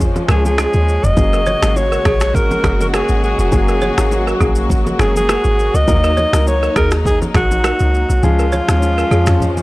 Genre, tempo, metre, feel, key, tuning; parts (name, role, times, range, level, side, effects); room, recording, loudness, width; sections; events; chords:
afrobeats; 102 BPM; 4/4; swing 55% on 16ths; F# major; A4 = 440 Hz
dark studio string section; sustained chords; 0.0-9.6 s; C#3 to F#4; -22 LUFS; left 1 dB
deep log drum bass; bass; 0.0-9.6 s; E#1 to E#2; -16 LUFS; equal
deep house drum kit; drums; 0.0-9.6 s; finger snaps, kick drum, rim click, shaker, toms; -18 LUFS; equal
bongos and congas; percussion; 0.2-9.6 s; -24 LUFS; right 1 dB
breathy alto saxophone; melody; 0.3-9.6 s; E#4 to D#5; -18 LUFS; equal
warm grand piano; accompaniment; 0.3-9.4 s; E#3 to A#4; -22 LUFS; left 2 dB
balafon; riff; 0.3-9.2 s; G#4 to C#5; -23 LUFS; right 2 dB
small room ambience; dry, gritty hardware recording, transformer saturation; -12 LUFS; side -19 dB against mid
0.0-9.6 A section
kick muted 8.2-9.6
0.0 C#; 1.2 F#add9; 5.9 D#m; 8.2 C#